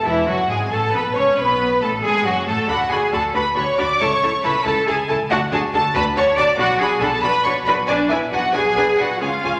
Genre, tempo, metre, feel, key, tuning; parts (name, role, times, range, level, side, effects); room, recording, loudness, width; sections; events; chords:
quick classical-period movement for string orchestra; 92 BPM (dotted quarters); 6/8; rubato; A major; A4 = 440 Hz
warm symphonic violin section; second line; 0.0-9.6 s; D5 to D6; -23 LUFS; equal
rich symphonic cello section; bass; 0.0-9.6 s; D4 to D5; -23 LUFS; equal
clear symphonic violin section; melody; 0.1-9.5 s; E4 to B5; -27 LUFS; equal
clear symphonic viola section; accompaniment; 0.1-9.5 s; E3 to B4; -27 LUFS; equal
rich symphonic double bass section; bass; 0.1-9.5 s; E1 to D2; -30 LUFS; equal
wet scoring stage reverb, RT60 1.6 s; -18 LUFS; mono
0.1-9.6 A section
0.1 A/E; 1.4 F#madd11; 2.7 Bm/D; 4.0 A/C#; 5.3 D; 6.6 Bm; 7.9 G#dim/B